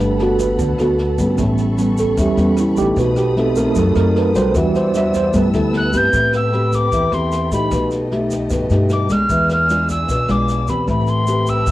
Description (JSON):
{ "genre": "bossa nova", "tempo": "152 BPM", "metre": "4/4", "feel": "straight", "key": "unclear", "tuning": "A4 = 437 Hz", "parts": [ { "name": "nylon-string guitar", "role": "accompaniment", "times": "0.0-11.7 s", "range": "A2 to B4", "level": "-19 LUFS", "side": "left 1 dB", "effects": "cassette tape, plate reverb" }, { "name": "tine electric piano", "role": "accompaniment", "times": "0.0-6.2 s", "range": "G3 to E5", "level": "-18 LUFS", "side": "right 3 dB", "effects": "medium stereo tremolo, cassette tape, plate reverb" }, { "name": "warm symphonic string section", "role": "sustained chords", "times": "0.0-11.7 s", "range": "B3 to E6", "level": "-31 LUFS", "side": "left 1 dB", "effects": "cassette tape, plate reverb" }, { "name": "upright bass", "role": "bass", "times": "0.0-11.7 s", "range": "G1 to A2", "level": "-21 LUFS", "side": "equal", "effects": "none" }, { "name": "egg shaker", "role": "percussion", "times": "0.0-11.7 s", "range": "none", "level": "-38 LUFS", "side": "right 4 dB", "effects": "none" }, { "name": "jazz brush drum kit", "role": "drums", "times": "0.2-11.7 s", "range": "kick drum, rim click, snare drum", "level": "-28 LUFS", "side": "equal", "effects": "cassette tape" }, { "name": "mellow soprano recorder", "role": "melody", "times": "5.8-11.7 s", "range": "B5 to G6", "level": "-19 LUFS", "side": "equal", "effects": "cassette tape" } ], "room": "moderate studio reverb, RT60 0.6 s", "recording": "home recording on cassette", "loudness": "-14 LUFS", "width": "side -15 dB against mid", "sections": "0.0-6.1 A section; 6.1-11.7 B section", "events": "tine electric piano solo 0.0-6.1", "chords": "0.0 Gmaj9; 1.4 A9; 3.0 B7b9; 4.6 Em9; 5.3 G69; 6.1 Am9; 7.7 B7b13; 9.3 E7b9; 10.9 Am9", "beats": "0.20 0.59 0.99 | 1.39 1.78 2.18 2.57 | 2.97 3.36 3.76 4.16 | 4.55 4.95 5.34 5.74 | 6.13 6.53 6.92 7.32 | 7.71 8.11 8.51 8.90 | 9.30 9.69 10.09 10.48 | 10.88 11.27 11.67" }